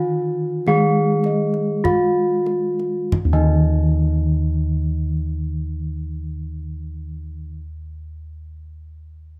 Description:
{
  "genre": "Javanese gamelan",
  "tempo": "44-56 BPM",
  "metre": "4/4",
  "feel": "straight",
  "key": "unclear",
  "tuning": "A4 = 440 Hz",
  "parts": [
    { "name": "gamelan-type bronze metallophone", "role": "melody", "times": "0.0-7.6 s", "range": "Eb4 to Ab4-20c", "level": "-25 LUFS", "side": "equal", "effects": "none" },
    { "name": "gamelan-type bronze metallophone", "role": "accompaniment", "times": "0.0-7.6 s", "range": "Eb3 to Ab3-20c", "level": "-27 LUFS", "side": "equal", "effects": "none" },
    { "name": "gamelan-type bossed gongs", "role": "arpeggios", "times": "0.0-7.6 s", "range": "Eb5 to F5+40c", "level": "-30 LUFS", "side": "equal", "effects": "none" },
    { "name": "gamelan-type bossed gongs", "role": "bass", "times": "0.0-7.5 s", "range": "Eb2 to F4+40c", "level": "-26 LUFS", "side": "equal", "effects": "none" },
    { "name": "kendang", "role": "percussion", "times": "0.7-3.8 s", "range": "none", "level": "-26 LUFS", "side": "equal", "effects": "none" }
  ],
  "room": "light reverb, small room ambience",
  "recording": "dry, close 1970s-style studio recording",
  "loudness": "-20 LUFS",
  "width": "mono",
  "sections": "0.0-3.1 A section; 3.1-8.5 B section",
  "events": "slowing down 0.0-3.1",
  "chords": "none"
}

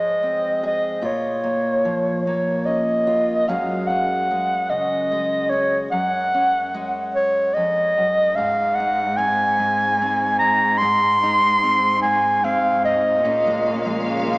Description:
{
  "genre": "acoustic folk-pop ballad",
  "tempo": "49 BPM (dotted quarters)",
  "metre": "6/8",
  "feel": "straight",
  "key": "unclear",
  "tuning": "A4 = 440 Hz",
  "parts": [
    { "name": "breathy clarinet", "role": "melody", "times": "0.0-14.0 s", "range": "Db5 to C6", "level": "-18 LUFS", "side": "equal", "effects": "analog delay" },
    { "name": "fingerpicked steel-string acoustic guitar", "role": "accompaniment", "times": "0.0-14.4 s", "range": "F2 to Ab4", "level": "-27 LUFS", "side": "left 1 dB", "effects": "none" },
    { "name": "rich cello", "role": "bass", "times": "8.4-14.4 s", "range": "Ab2 to Bb2", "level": "-27 LUFS", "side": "equal", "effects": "none" },
    { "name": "warm symphonic string section", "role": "sustained chords", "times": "13.2-14.4 s", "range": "Db3 to F5", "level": "-26 LUFS", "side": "equal", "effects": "none" }
  ],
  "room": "wet lush hall reverb, RT60 2.3 s",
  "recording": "dreamy mix soaked in reverb, small speaker sound",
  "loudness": "-17 LUFS",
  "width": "side -27 dB against mid",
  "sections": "0.0-3.5 A section; 3.5-13.2 B section; 13.2-14.4 C section",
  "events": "none",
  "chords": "0.0 Fm/Ab; 1.0 Bbm; 3.5 Gbsus2; 8.4 Ab; 13.2 Bbm7"
}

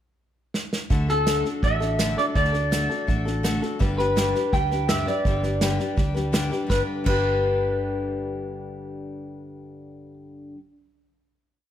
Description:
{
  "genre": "honky-tonk and classic country",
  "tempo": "166 BPM",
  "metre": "4/4",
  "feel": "straight",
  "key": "G major",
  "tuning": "A4 = 435 Hz",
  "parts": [
    { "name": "unplugged drum kit", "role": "drums", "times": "0.5-7.2 s", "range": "crash cymbal, hi-hat, kick drum, snare drum", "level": "-26 LUFS", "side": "right 1 dB", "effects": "none" },
    { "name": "picked steel-string acoustic guitar", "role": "accompaniment", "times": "0.9-10.6 s", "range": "G2 to B4", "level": "-28 LUFS", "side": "left 3 dB", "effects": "none" },
    { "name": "vintage muted fingered electric bass", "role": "bass", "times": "0.9-10.1 s", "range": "G1 to D2", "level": "-28 LUFS", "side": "right 1 dB", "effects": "none" },
    { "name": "electric guitar through a small old amp", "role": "melody", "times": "1.1-10.1 s", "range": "A4 to G5", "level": "-25 LUFS", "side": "left 1 dB", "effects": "spring reverb" }
  ],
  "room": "light reverb",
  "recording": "none",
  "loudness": "-21 LUFS",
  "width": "side -10 dB against mid",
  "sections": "0.0-0.9 pickup bar; 0.9-6.7 A section; 6.7-9.6 final chord",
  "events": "drum fill 0.5-0.9",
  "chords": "0.0 N.C.; 0.9 D; 3.8 G"
}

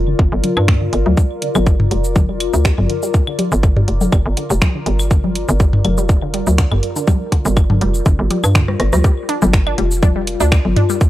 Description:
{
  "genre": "minimal techno",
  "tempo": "122 BPM",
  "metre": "4/4",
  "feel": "swing 54% on 16ths",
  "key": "G minor",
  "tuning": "A4 = 440 Hz",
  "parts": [
    { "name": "hollow knocking FM bass", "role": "bass", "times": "0.0-10.7 s", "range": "F1 to G2", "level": "-17 LUFS", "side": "equal", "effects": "sidechain pumping" },
    { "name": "warbly tape-like pad", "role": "texture", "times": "0.0-11.1 s", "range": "F4 to D5", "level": "-24 LUFS", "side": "left 2 dB", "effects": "chorus, built-in reverb, phaser, sidechain pumping" },
    { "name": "resonant blip pluck", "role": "riff", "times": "0.1-10.9 s", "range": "D3 to D4", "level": "-24 LUFS", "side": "right 1 dB", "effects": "phaser, sidechain pumping, analog delay" },
    { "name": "electronic kick drum", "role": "drums", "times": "0.2-11.1 s", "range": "none", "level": "-13 LUFS", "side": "equal", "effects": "overdrive" },
    { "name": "garage drum kit", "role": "drums", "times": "0.4-11.1 s", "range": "cabasa, finger snaps, hi-hat, rim click", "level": "-23 LUFS", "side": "right 1 dB", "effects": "overdrive" },
    { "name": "electronic toms and claves", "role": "percussion", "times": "0.4-10.9 s", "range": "none", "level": "-19 LUFS", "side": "left 1 dB", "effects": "overdrive" }
  ],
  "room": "digital ambience",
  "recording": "dry, gritty hardware recording",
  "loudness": "-13 LUFS",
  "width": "side -14 dB against mid",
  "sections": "0.0-9.0 A section; 9.0-11.1 B section",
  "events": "filter sweep on synth pluck 0.0-9.0; drum fill 8.7-9.0; band accent 8.9; drop 9.0-11.1",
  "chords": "0.0 Gm7"
}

